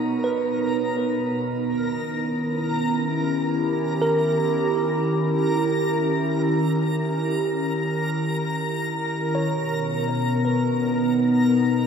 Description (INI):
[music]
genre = ambient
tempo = free time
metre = none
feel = none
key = unclear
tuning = A4 = 439 Hz
[part]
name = warbly tape-like pad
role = sustained chords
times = 0.0-11.9 s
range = B2 to A#5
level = -22 LUFS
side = equal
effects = chorus, built-in reverb, phaser, shimmer reverb
[part]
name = tine electric piano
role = arpeggios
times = 0.0-11.9 s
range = A#4 to C#5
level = -29 LUFS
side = right 2 dB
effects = auto-pan, diffuse ambient delay, shimmer reverb
[part]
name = backwards swelling texture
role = texture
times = 0.0-11.9 s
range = A#4 to A#5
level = -29 LUFS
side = left 1 dB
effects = built-in reverb, shimmer reverb
[sound]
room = wet cathedral reverb, RT60 6.8 s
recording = in a vast, echoing space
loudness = -21 LUFS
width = side -6 dB against mid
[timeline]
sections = 0.0-11.9 A section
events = fade-out on tine electric piano 0.0-11.9; filter sweep on ambient pad 0.0-11.9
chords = 0.0 Bmaj7; 1.5 D#7b9b13; 9.3 Bmaj7